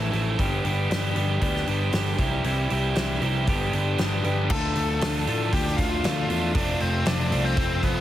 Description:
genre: quiet-loud alternative rock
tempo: 117 BPM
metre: 4/4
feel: straight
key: unclear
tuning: A4 = 443 Hz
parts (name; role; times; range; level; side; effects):
- electric guitar through a small old amp; arpeggios; 0.0-8.0 s; F2 to G4; -30 LUFS; left 4 dB; wide subtle chorus, plate reverb, digital delay
- biting overdriven guitar; riff; 0.0-8.0 s; G2 to A4; -28 LUFS; right 6 dB; none
- picked electric bass; bass; 0.0-8.0 s; F1 to A2; -27 LUFS; equal; none
- huge arena drum kit; drums; 0.1-7.9 s; crash cymbal, hi-hat, kick drum, snare drum; -28 LUFS; equal; none
- nasal lead guitar with a parked wah; melody; 4.5-8.0 s; B3 to A5; -29 LUFS; left 4 dB; overdrive, plate reverb
room: light reverb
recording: heavily compressed radio sound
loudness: -22 LUFS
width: side -12 dB against mid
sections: 0.0-4.5 A section; 4.5-8.0 B section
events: none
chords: 0.4 G; 2.2 C; 3.5 G; 4.5 Dm; 6.5 F

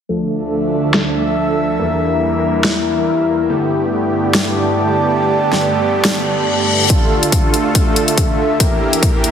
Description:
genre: heavy wobble dubstep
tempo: 141 BPM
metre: 4/4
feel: swing 55% on 16ths, half-time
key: D minor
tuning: A4 = 440 Hz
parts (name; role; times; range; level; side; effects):
- supersaw chords; sustained chords; 0.1-9.3 s; D2 to Bb4; -18 LUFS; right 1 dB; sidechain pumping, low-pass filter
- airy breathy pad; texture; 0.2-9.3 s; D4 to A5; -18 LUFS; equal; chorus, sidechain pumping
- dubstep drum kit; drums; 0.9-9.3 s; hi-hat, snare drum; -18 LUFS; left 1 dB; high-pass filter on snare, low-pass filter on snare, studio reverb, high-pass filter on hats, low-pass filter on hats
- reverse cymbal; sound effects; 6.2-6.9 s; none; -18 LUFS; left 7 dB; none
- electronic kick drum; drums; 6.9-9.1 s; none; -15 LUFS; equal; studio reverb
room: wet lush hall reverb, RT60 1.9 s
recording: heavily compressed radio sound, multiband compression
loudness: -13 LUFS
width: side -8 dB against mid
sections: 0.1-6.9 A section; 6.9-9.3 B section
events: filter sweep on supersaw synth 0.1-6.9; reverse cymbal 6.2-6.9; build-up 6.9-9.3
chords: 0.1 Dm; 1.8 Edim; 3.5 Gadd9; 6.9 Dm; 8.6 Edim

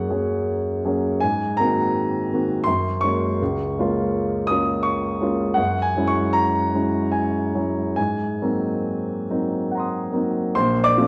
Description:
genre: classical, impressionist solo piano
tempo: 69-85 BPM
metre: 3/4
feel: rubato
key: Db major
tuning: A4 = 440 Hz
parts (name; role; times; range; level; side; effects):
- warm concert grand piano; solo; 0.0-11.1 s; Bb1 to Eb6; -22 LUFS; equal; none
room: wet scoring stage reverb, RT60 2.0 s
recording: worn, warbling old tape, cassette tape, warbly pitch drift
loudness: -22 LUFS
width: mono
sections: 0.0-10.5 A section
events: none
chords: 0.0 Gbadd9; 1.2 Ab9; 2.7 Gbadd9; 3.4 Db6; 5.6 Gb9; 8.0 Ab9; 10.5 Bbmaj9

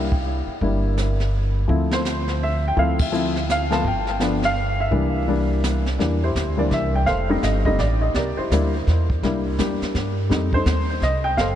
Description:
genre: jazz piano trio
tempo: 167 BPM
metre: 3/4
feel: swing 62% on 8ths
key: C mixolydian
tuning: A4 = 440 Hz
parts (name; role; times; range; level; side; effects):
- warm upright piano; melody; 0.0-11.6 s; E3 to A5; -22 LUFS; left 2 dB; ping-pong delay
- upright bass; bass; 0.0-11.6 s; F1 to G2; -22 LUFS; equal; none
- jazz brush drum kit; drums; 0.1-11.6 s; brushed snare drum, hi-hat, kick drum, ride cymbal, snare drum; -28 LUFS; right 1 dB; vintage 12-bit sampler grit
room: moderate huge ambient reverb, RT60 4.1 s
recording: dreamy mix soaked in reverb, cassette tape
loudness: -19 LUFS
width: side -10 dB against mid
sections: 0.0-6.0 A section; 6.0-11.6 A section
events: band accent 3.0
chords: 0.0 C7; 1.7 Dm7; 3.8 G7(no3); 4.9 C7; 7.1 F7; 8.2 C7; 10.3 F7

